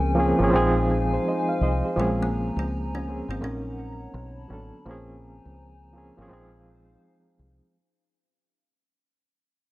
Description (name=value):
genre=hip hop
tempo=83 BPM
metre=4/4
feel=swing 64% on 16ths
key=Bb minor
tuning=A4 = 436 Hz
part: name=bright reed electric piano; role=accompaniment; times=0.0-7.8 s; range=F3 to F5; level=-24 LUFS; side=right 1 dB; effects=fast tremolo
part: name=warbly tape-like pad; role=sustained chords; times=0.0-7.7 s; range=Db3 to B5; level=-33 LUFS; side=left 2 dB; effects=chorus, built-in reverb
part: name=deep dub fingered electric bass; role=bass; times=0.0-7.6 s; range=Ab1 to Db2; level=-28 LUFS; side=equal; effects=none
part: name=kalimba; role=melody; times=2.0-4.5 s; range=Ab3 to Db4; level=-35 LUFS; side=equal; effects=none
room=light reverb, digital ambience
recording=worn, warbling old tape, cassette tape, warbly pitch drift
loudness=-22 LUFS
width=side -18 dB against mid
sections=0.0-7.8 A section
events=fade-out 0.0-7.8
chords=0.0 Bbm9; 0.5 Fm7/Bb; 2.0 Bbm9; 3.4 Ebm7/Bb; 4.1 Bm9; 4.9 Bbm9; 6.3 Fm7/Bb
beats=0.52 1.25 | 1.97 2.69 3.42 4.14 | 4.86 5.58 6.31 7.03